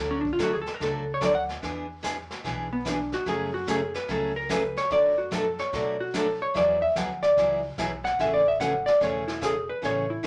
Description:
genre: country, western swing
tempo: 146 BPM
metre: 4/4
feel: swing 65% on 8ths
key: A major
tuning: A4 = 440 Hz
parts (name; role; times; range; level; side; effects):
- picked steel-string acoustic guitar; accompaniment; 0.0-10.3 s; B2 to G#4; -32 LUFS; equal; none
- upright bass; bass; 0.0-10.3 s; E1 to B2; -43 LUFS; equal; none
- vintage hollow-body jazz guitar; melody; 0.1-10.2 s; B3 to F#5; -27 LUFS; equal; none
- vintage brush drum kit; drums; 0.3-10.3 s; brushed snare drum, hi-hat, kick drum, snare drum; -39 LUFS; equal; none
room: wet small room reverb, RT60 0.6 s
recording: none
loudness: -26 LUFS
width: mono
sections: 0.0-10.3 A section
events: hollow-body jazz guitar solo 0.0-10.3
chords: 0.0 D; 1.6 E7; 3.3 F#madd9; 4.9 Bm7/F#; 6.5 Eadd9; 8.2 Amaj7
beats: 0.40 0.81 1.22 | 1.63 2.04 2.45 2.86 | 3.27 3.68 4.09 4.50 | 4.91 5.32 5.73 6.14 | 6.55 6.96 7.37 7.78 | 8.19 8.60 9.01 9.42 | 9.83 10.24

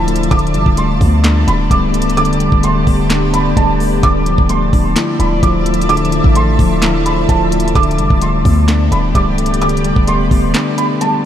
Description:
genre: hip hop, trap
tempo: 129 BPM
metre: 4/4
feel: half-time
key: unclear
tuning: A4 = 445 Hz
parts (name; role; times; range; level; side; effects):
- felt-muted upright piano; melody; 0.0-11.2 s; A5 to D6; -19 LUFS; right 2 dB; ensemble chorus, ping-pong delay
- mellow tine electric piano; accompaniment; 0.0-11.3 s; D3 to E4; -16 LUFS; left 2 dB; none
- granular cloud pad; sustained chords; 0.0-11.3 s; F3 to A5; -20 LUFS; equal; built-in reverb, wide subtle chorus
- warm 808-style bass; bass; 0.0-10.5 s; C1 to D2; -16 LUFS; equal; none
- trap drum kit; drums; 0.1-11.1 s; handclaps, hi-hat, kick drum, snare drum; -17 LUFS; equal; none
room: moderate huge ambient reverb, RT60 8.2 s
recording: dreamy mix soaked in reverb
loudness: -11 LUFS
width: side -10 dB against mid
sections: 0.0-11.3 A section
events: kick muted 10.5-11.3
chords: 0.3 Gadd9; 4.0 Dmadd9; 7.8 Gadd9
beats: | 0.31 0.78 1.24 1.71 | 2.17 2.64 3.10 3.57 | 4.03 4.50 4.96 5.43 | 5.89 6.36 6.82 7.29 | 7.75 8.22 8.68 9.15 | 9.61 10.08 10.54 11.01

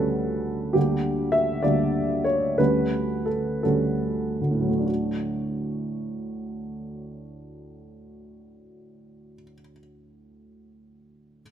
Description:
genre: classical, romantic character piece for solo piano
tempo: 46-69 BPM (dotted quarters)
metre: 6/8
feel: rubato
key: D major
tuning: A4 = 440 Hz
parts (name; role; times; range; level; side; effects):
- warm upright piano; solo; 0.0-11.4 s; D2 to E5; -23 LUFS; right 1 dB; none
room: light reverb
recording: close, detailed microphones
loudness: -22 LUFS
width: side -9 dB against mid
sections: 0.0-4.9 A section; 4.9-9.3 B section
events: slowing down 0.0-4.9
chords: 0.0 A7/D; 0.8 Gm/D; 2.6 A7/D; 4.9 D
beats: | 0.75 1.63 | 2.58 3.66 | 4.88 5.97 | 7.07 8.17

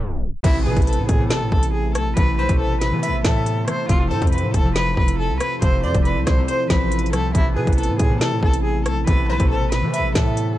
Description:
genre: hip hop, drill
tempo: 139 BPM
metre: 4/4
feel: half-time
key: A minor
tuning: A4 = 440 Hz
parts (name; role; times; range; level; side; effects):
- warm cello; melody; 0.0-10.6 s; A3 to C5; -25 LUFS; left 1 dB; digital delay
- distorted 808-style bass; bass; 0.0-10.6 s; F1 to E3; -23 LUFS; equal; distortion
- drill drum kit; drums; 0.0-10.5 s; crash cymbal, hi-hat, kick drum, rim click, snare drum; -20 LUFS; equal; vintage 12-bit sampler grit
- riser and impact; sound effects; 0.0-2.2 s; none; -30 LUFS; equal; none
- concert harp; accompaniment; 0.4-10.6 s; B2 to C4; -25 LUFS; left 1 dB; none
- dark analog pad; sustained chords; 0.4-10.6 s; F3 to A4; -30 LUFS; equal; lush chorus
- glassy wavetable pluck; second line; 0.7-10.3 s; B4 to E5; -31 LUFS; equal; chorus, digital delay
room: little or no reverb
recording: dark, warm production, tape stop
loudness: -17 LUFS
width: side -14 dB against mid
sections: 0.4-10.6 A section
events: riser 0.0-0.4; tape stop 0.0-0.4; impact 0.4-2.2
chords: 0.4 Amadd9; 3.9 F; 7.3 Amadd9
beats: 0.01 | 0.44 0.87 1.30 1.74 | 2.17 2.60 3.03 3.46 | 3.89 4.33 4.76 5.19 | 5.62 6.05 6.48 6.92 | 7.35 7.78 8.21 8.64 | 9.07 9.51 9.94 10.37

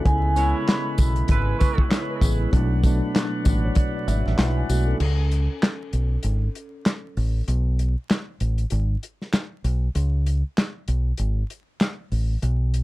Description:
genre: hip hop, boom-bap hip-hop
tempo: 97 BPM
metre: 4/4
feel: swing 60% on 16ths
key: C# phrygian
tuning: A4 = 442 Hz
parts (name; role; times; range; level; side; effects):
- mellow tine electric piano; accompaniment; 0.0-7.5 s; B2 to G#5; -28 LUFS; equal; medium stereo tremolo, cassette tape, high-pass filter, low-pass filter
- overdriven tonewheel organ; sustained chords; 0.0-5.0 s; G#3 to B4; -35 LUFS; equal; slow rotary speaker, high-pass filter, low-pass filter
- vibraphone with soft mallets; melody; 0.1-1.8 s; G#5 to C#6; -28 LUFS; right 1 dB; high-pass filter, low-pass filter, tape echo
- deep dub fingered electric bass; bass; 0.1-12.8 s; G#1 to C#2; -21 LUFS; equal; none
- warm soul drum kit; drums; 0.1-12.8 s; crash cymbal, handclaps, hi-hat, kick drum, snare drum; -22 LUFS; equal; none
- clear saxophone section; stabs; 0.4-1.8 s; G#3 to C#5; -32 LUFS; right 5 dB; high-pass filter, low-pass filter, tape echo
- tambourine; percussion; 0.4-4.9 s; none; -39 LUFS; left 6 dB; none
room: little or no reverb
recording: dark, warm production, vinyl crackle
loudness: -20 LUFS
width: side -18 dB against mid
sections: 0.0-5.0 A section; 5.0-12.8 B section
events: break 5.0-12.8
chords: 0.1 C#m7; 2.5 Bm7; 5.0 C#5; 7.5 G#m; 10.0 C#5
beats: | 0.05 0.67 1.29 1.91 | 2.53 3.15 3.77 4.38 | 5.00 5.62 6.24 6.86 | 7.48 8.10 8.71 9.33 | 9.95 10.57 11.19 11.81 | 12.43

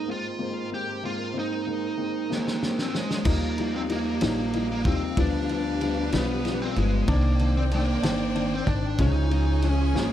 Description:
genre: six-eight pop ballad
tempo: 63 BPM (dotted quarters)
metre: 6/8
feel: straight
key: Eb major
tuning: A4 = 440 Hz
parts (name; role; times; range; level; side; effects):
- smooth overdriven lead guitar; melody; 0.0-10.1 s; Ab3 to G4; -28 LUFS; right 2 dB; none
- warm studio string section; sustained chords; 0.0-10.1 s; Ab2 to Ab5; -36 LUFS; equal; none
- dark baby grand piano; accompaniment; 0.1-10.1 s; Eb3 to Eb4; -30 LUFS; left 4 dB; none
- loose indie drum kit; drums; 2.3-10.1 s; crash cymbal, kick drum, ride cymbal, snare drum; -31 LUFS; equal; none
- upright bass; bass; 3.3-10.1 s; G1 to Eb2; -26 LUFS; equal; none
room: small room ambience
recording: none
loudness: -23 LUFS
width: side -11 dB against mid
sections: 0.0-3.3 A section; 3.3-10.1 B section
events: drum fill 2.3-3.3, 9.9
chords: 0.0 Abadd9; 3.3 Ebadd9; 5.2 G7/D; 7.1 Cmadd9; 9.0 Db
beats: 0.39 | 1.35 2.30 | 3.26 4.21 | 5.17 6.12 | 7.08 8.03 | 8.99 9.94

